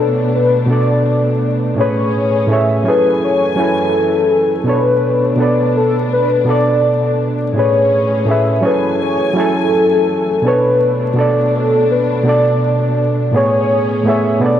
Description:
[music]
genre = hip hop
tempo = 83 BPM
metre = 4/4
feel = swing 56% on 16ths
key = B dorian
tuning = A4 = 440 Hz
[part]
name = warm velvety synth lead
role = melody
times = 0.0-14.6 s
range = A4 to E5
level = -16 LUFS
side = left 2 dB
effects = chorus, tape echo
[part]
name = overdriven reed electric piano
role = accompaniment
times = 0.0-14.6 s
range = A2 to G#5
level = -15 LUFS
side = right 1 dB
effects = cassette tape, tape echo
[part]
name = dark studio string section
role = sustained chords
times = 0.0-14.6 s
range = F#2 to G#5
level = -24 LUFS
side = left 3 dB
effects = none
[sound]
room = moderate plate reverb, RT60 3.3 s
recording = echo-heavy mix, vinyl crackle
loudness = -12 LUFS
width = side -10 dB against mid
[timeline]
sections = 0.0-14.6 A section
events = none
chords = 0.0 Bm7; 1.8 Amaj7; 2.9 F#m9; 4.7 Bm7; 7.6 Amaj7; 8.6 F#m9; 10.5 Bm7; 13.3 Amaj7

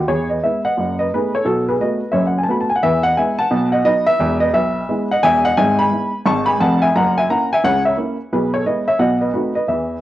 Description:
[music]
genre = jazz, stride piano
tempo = 175 BPM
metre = 4/4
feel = swing 63% on 8ths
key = E major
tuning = A4 = 435 Hz
[part]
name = warm upright piano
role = solo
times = 0.0-10.0 s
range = E1 to C#6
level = -15 LUFS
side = equal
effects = cassette tape
[sound]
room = wet spring reverb, RT60 1.1 s, small room ambience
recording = home recording on cassette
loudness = -15 LUFS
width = side -14 dB against mid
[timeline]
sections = 0.1-10.0 A section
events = none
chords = 0.1 E; 0.8 B7/F#; 1.5 B7; 2.8 E; 3.5 B; 4.2 E; 5.6 E/G#; 6.9 F#7; 8.3 E/B; 9.0 B7b9

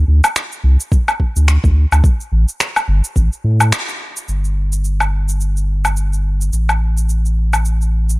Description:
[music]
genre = organic downtempo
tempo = 107 BPM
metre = 4/4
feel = swing 58% on 16ths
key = A minor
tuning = A4 = 440 Hz
[part]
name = warm sub bass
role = bass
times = 0.0-8.2 s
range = G1 to A2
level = -13 LUFS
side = equal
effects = none
[part]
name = electronic woodblock, shaker and finger snaps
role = drums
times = 0.2-8.2 s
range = none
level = -18 LUFS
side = left 1 dB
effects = none
[part]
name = electronic kick drum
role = drums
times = 0.9-3.3 s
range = none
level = -14 LUFS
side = equal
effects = none
[sound]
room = little or no reverb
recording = dry, gritty hardware recording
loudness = -13 LUFS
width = side -21 dB against mid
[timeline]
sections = 0.0-4.3 A section; 4.3-8.2 B section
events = break 3.7-4.3; band accent 3.7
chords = none

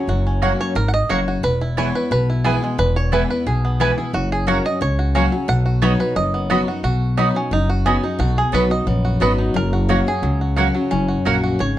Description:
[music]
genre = bluegrass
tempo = 177 BPM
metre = 4/4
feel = straight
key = B major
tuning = A4 = 440 Hz
[part]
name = bluegrass banjo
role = melody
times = 0.0-11.8 s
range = F#3 to F#5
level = -23 LUFS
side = right 2 dB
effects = none
[part]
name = picked steel-string acoustic guitar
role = accompaniment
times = 0.0-11.8 s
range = E2 to F#4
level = -22 LUFS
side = left 3 dB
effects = none
[part]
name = upright bass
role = bass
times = 0.1-11.8 s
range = E1 to C#2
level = -20 LUFS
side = equal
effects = none
[part]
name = mandolin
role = stabs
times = 0.4-11.4 s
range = A#3 to B5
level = -22 LUFS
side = right 6 dB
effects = none
[sound]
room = moderate studio reverb, RT60 0.6 s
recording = dark, warm production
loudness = -16 LUFS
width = side -13 dB against mid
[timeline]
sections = 0.0-6.8 A section; 6.8-11.8 A section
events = five-string banjo solo 0.0-11.8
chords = 0.0 F#; 1.4 E; 4.1 F#; 5.5 B; 9.6 F#

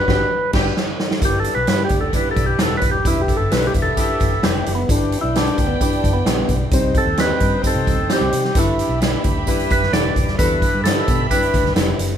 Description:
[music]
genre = uptempo 1960s-style soul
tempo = 131 BPM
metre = 4/4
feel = straight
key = G major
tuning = A4 = 440 Hz
[part]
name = percussive tonewheel organ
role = melody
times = 0.0-11.7 s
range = B3 to D5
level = -21 LUFS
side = right 1 dB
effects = slow rotary speaker
[part]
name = warm studio violin section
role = second line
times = 0.1-12.2 s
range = B3 to B5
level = -29 LUFS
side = right 3 dB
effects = none
[part]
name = dark upright piano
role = accompaniment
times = 0.1-12.1 s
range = F#3 to Eb5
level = -25 LUFS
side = left 4 dB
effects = none
[part]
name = vintage muted fingered electric bass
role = bass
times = 0.1-12.2 s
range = Eb1 to C3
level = -24 LUFS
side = equal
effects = none
[part]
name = swinging big-band drum kit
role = drums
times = 0.1-12.1 s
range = crash cymbal, hi-hat, kick drum, snare drum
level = -19 LUFS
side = equal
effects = none
[part]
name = clear saxophone section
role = second line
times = 1.2-4.4, 8.6-11.7 s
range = D4 to B4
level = -31 LUFS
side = equal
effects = none
[part]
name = tambourine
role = percussion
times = 1.2-12.1 s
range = none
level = -35 LUFS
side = right 5 dB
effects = none
[part]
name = congas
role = percussion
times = 1.7-12.1 s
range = none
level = -35 LUFS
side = right 4 dB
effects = none
[sound]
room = light reverb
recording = band playing live in one room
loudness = -15 LUFS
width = side -9 dB against mid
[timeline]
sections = 0.0-1.2 A section; 1.2-12.2 B section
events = band accent 0.0-1.2; drum fill 0.3-1.2; tonewheel organ solo 1.2-12.2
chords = 0.0 Gmaj7; 1.2 G6; 3.1 Em7; 4.9 G6; 6.7 Cm; 8.6 G6; 10.4 Em7

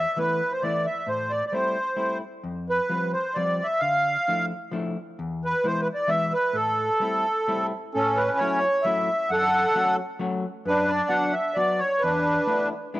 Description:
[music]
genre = musette waltz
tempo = 132 BPM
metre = 3/4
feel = straight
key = A minor, A major from 7.9 s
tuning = A4 = 440 Hz
[part]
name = accordion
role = melody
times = 0.0-12.7 s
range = C#4 to F#5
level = -22 LUFS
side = right 1 dB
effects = light tremolo tuning, cassette tape
[part]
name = vintage hollow-body jazz guitar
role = accompaniment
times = 0.0-13.0 s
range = E2 to F#4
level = -30 LUFS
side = left 3 dB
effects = cassette tape
[sound]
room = light reverb, small room reverb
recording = home recording on cassette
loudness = -22 LUFS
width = side -16 dB against mid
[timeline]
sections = 0.0-7.9 A section; 7.9-13.0 B section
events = none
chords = 0.0 Esus4; 1.1 Am7; 2.4 Fsus2; 3.8 Dmadd9; 5.2 E; 6.6 Am7; 7.9 A6; 9.3 F#m; 10.7 Bm/F#; 12.0 E7sus4

